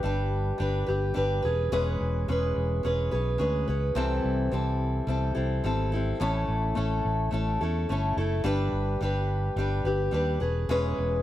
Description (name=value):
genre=folk rock and heartland rock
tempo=107 BPM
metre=4/4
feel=straight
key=A mixolydian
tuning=A4 = 439 Hz
part: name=picked acoustic archtop guitar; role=accompaniment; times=0.0-11.2 s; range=A2 to B4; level=-28 LUFS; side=left 1 dB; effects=none
part: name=fingered electric bass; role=bass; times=0.0-11.2 s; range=E1 to E2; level=-28 LUFS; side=right 1 dB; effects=none
room=light reverb, studio reverb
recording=none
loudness=-25 LUFS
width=side -13 dB against mid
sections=0.0-11.2 A section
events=none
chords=0.0 G; 1.4 E6; 4.0 C6; 6.2 A; 8.4 G; 10.4 E6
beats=0.03 0.59 1.15 | 1.71 2.27 2.84 3.40 | 3.96 4.52 5.08 5.64 | 6.20 6.76 7.33 7.89 | 8.45 9.01 9.57 10.13 | 10.69